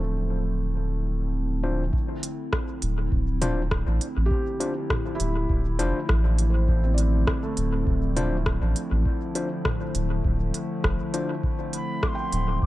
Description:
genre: ambient dub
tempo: 101 BPM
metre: 4/4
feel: straight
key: D minor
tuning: A4 = 440 Hz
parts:
  - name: warbly tape-like pad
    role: sustained chords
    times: 0.0-12.7 s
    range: D3 to E4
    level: -31 LUFS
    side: equal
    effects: chorus, built-in reverb
  - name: felt-muted upright piano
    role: arpeggios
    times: 0.0-12.7 s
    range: A3 to G5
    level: -35 LUFS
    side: right 2 dB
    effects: dub echo
  - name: soft dub sub bass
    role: bass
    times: 0.0-12.7 s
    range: D1 to A1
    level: -24 LUFS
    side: equal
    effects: none
  - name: overdriven tine electric piano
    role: stabs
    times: 1.6-11.3 s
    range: D4 to C5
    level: -34 LUFS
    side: left 3 dB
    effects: dub echo
  - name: electronic kick drum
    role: drums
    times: 1.9-12.7 s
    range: none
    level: -27 LUFS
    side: equal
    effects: none
  - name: organic electronic drum kit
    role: drums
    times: 2.2-12.4 s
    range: hi-hat, rim click, toms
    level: -31 LUFS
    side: equal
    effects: dub echo
  - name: mellow wooden flute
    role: melody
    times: 11.7-12.7 s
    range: B5 to D6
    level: -30 LUFS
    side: left 1 dB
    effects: dub echo
room: little or no reverb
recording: none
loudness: -23 LUFS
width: side -16 dB against mid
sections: 0.0-1.9 A section; 1.9-12.7 B section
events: filter sweep on ambient pad 0.0-1.9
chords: 0.0 Dm7

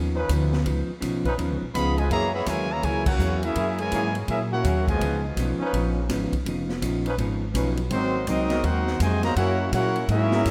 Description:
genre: jazz, big band swing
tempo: 166 BPM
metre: 4/4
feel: swing 64% on 8ths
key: unclear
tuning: A4 = 442 Hz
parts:
  - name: vintage hollow-body jazz guitar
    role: accompaniment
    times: 0.0-10.5 s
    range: Ab2 to Ab4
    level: -32 LUFS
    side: equal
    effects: subtle chorus
  - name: upright bass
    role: bass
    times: 0.0-10.5 s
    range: F1 to Bb2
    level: -28 LUFS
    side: equal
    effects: none
  - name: clear trombone section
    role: sustained chords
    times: 0.1-10.5 s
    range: F3 to Cb5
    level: -35 LUFS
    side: equal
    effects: none
  - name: swinging big-band drum kit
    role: drums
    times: 0.3-10.5 s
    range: crash cymbal, hi-hat, kick drum, ride cymbal, snare drum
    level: -35 LUFS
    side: equal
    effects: none
  - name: clear trombone section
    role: second line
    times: 1.7-5.2, 7.9-10.5 s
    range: Cb3 to Gb4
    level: -31 LUFS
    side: equal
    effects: analog delay
  - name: clear trumpet section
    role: melody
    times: 1.8-5.2, 7.9-10.5 s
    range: Bb3 to Cb6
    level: -30 LUFS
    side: equal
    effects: analog delay
room: moderate lush hall reverb, RT60 1.7 s, studio ambience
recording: dreamy mix soaked in reverb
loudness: -24 LUFS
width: mono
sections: 0.0-10.5 A section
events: band accent 3.0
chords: 0.0 Db9; 2.1 Gb9; 5.0 Db9; 7.9 Ab9; 9.4 Gb9

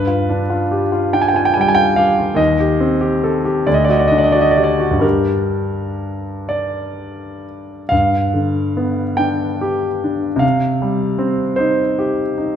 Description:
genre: classical, romantic nocturne for solo piano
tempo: 40-53 BPM (dotted quarters)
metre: 6/8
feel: rubato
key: G minor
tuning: A4 = 440 Hz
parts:
  - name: warm grand piano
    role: solo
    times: 0.0-12.6 s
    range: D2 to Ab5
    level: -14 LUFS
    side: equal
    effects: none
room: moderate recital hall reverb, RT60 1.7 s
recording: recorded in a church or concert hall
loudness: -14 LUFS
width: side -8 dB against mid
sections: 0.0-7.9 A section; 7.9-12.6 B section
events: none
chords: 0.0 G7; 2.4 Cm/Eb; 3.7 D; 5.0 Gm; 7.9 G7; 10.4 Cm

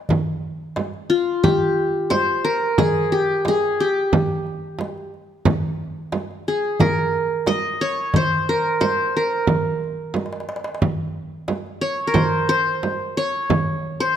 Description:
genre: Turkish makam ensemble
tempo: 90 BPM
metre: 4/4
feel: straight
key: C makam kurdi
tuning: A4 = 440 Hz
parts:
  - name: darbuka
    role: percussion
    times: 0.1-13.7 s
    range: none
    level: -25 LUFS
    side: left 1 dB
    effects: none
  - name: frame drum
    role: percussion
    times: 0.1-13.7 s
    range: none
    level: -23 LUFS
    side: right 4 dB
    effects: none
  - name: qanun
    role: melody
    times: 1.1-14.2 s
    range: F4 to Eb5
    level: -20 LUFS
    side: left 1 dB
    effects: none
room: light reverb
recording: close, detailed microphones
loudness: -19 LUFS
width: side -9 dB against mid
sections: 0.1-14.2 A section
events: drum fill 10.1-10.8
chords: none

